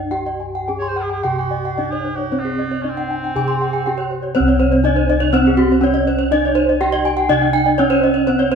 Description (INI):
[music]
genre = Balinese gamelan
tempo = 104-123 BPM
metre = 4/4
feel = straight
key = C pelog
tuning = A4 = 440 Hz
[part]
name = gamelan-type bronze metallophone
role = melody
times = 0.0-8.6 s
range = C4 to Ab4-40c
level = -19 LUFS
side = right 1 dB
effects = none
[part]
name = gamelan-type bronze metallophone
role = arpeggios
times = 0.0-8.5 s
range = Ab4-40c to Ab5-40c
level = -21 LUFS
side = left 3 dB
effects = none
[part]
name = gamelan-type bossed gongs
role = bass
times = 0.0-8.6 s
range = C2 to G4-45c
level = -22 LUFS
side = equal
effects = none
[part]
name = gamelan-type bronze metallophone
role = arpeggios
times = 0.3-8.6 s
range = G4-45c to C6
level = -22 LUFS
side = right 3 dB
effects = none
[part]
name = warm cor anglais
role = second line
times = 0.8-4.2 s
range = C4 to Db5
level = -28 LUFS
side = right 2 dB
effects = none
[sound]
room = wet stone room reverb, RT60 1.3 s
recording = band playing live in one room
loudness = -15 LUFS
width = side -6 dB against mid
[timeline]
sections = 0.0-4.4 A section; 4.4-8.6 B section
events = none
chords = none